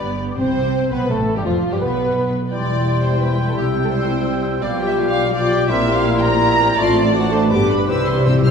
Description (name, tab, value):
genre	classical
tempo	169 BPM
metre	3/4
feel	straight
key	C major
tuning	A4 = 441 Hz
part	rich symphonic violin section	melody	0.0-8.5 s	F4 to F6	-32 LUFS	left 2 dB	none
part	mellow clarinet	second line	0.0-8.5 s	D4 to C5	-26 LUFS	left 3 dB	none
part	mellow cor anglais	second line	0.0-8.5 s	F4 to A5	-27 LUFS	right 1 dB	none
part	mellow hollow small flute group	second line	0.0-8.5 s	F4 to E6	-27 LUFS	left 2 dB	none
part	warm symphonic violin section	second line	0.0-8.5 s	F4 to Bb5	-23 LUFS	left 1 dB	none
part	mellow bassoon	accompaniment	0.0-8.5 s	F3 to C4	-25 LUFS	right 1 dB	none
part	rich symphonic viola section	accompaniment	0.0-8.5 s	F3 to C5	-25 LUFS	equal	none
part	clear symphonic double bass section	bass	0.0-8.5 s	E1 to C2	-22 LUFS	right 1 dB	none
part	rich symphonic cello section	bass	0.0-8.5 s	E2 to C3	-25 LUFS	right 2 dB	none
part	mellow French horn section	sustained chords	0.4-8.5 s	F3 to F#4	-25 LUFS	left 2 dB	none
part	timpani	percussion	0.4-0.9, 7.9-8.5 s	C3	-22 LUFS	left 2 dB	none
room	wet scoring stage reverb, RT60 1.6 s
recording	heard from further back in the room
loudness	-15 LUFS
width	side -6 dB against mid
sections	0.4-8.5 A section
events	timpani fill 7.9-8.5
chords	0.4 C5; 1.5 G7/F; 2.5 C/E; 3.6 C; 4.6 G7/B; 5.7 C7/Bb; 6.8 F/A; 7.1 D7/A; 7.5 G; 7.9 C